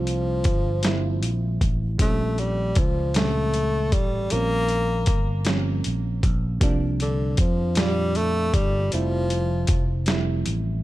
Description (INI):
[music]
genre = slow six-eight R&B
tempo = 52 BPM (dotted quarters)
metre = 6/8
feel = straight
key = unclear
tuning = A4 = 438 Hz
[part]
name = breathy tenor saxophone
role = melody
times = 0.0-10.0 s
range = D3 to Bb3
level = -26 LUFS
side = left 1 dB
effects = ping-pong delay
[part]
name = mellow FM electric piano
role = accompaniment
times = 0.0-10.8 s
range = Bb2 to F4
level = -30 LUFS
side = right 4 dB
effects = chorus
[part]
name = fingered electric bass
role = bass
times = 0.0-10.8 s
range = F1 to F2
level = -25 LUFS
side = equal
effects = none
[part]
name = dusty soul sampler-style drum kit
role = drums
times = 0.1-10.6 s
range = hi-hat, kick drum, snare drum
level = -23 LUFS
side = equal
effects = overdrive
[sound]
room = little or no reverb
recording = dark, warm production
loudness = -20 LUFS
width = side -16 dB against mid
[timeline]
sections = 0.0-10.8 A section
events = none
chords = 0.0 C9sus4; 2.0 Bbm6; 6.6 C9sus4; 8.9 Fmaj9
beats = 0.84 | 1.99 3.15 | 4.30 5.46 | 6.61 7.76 | 8.92 10.07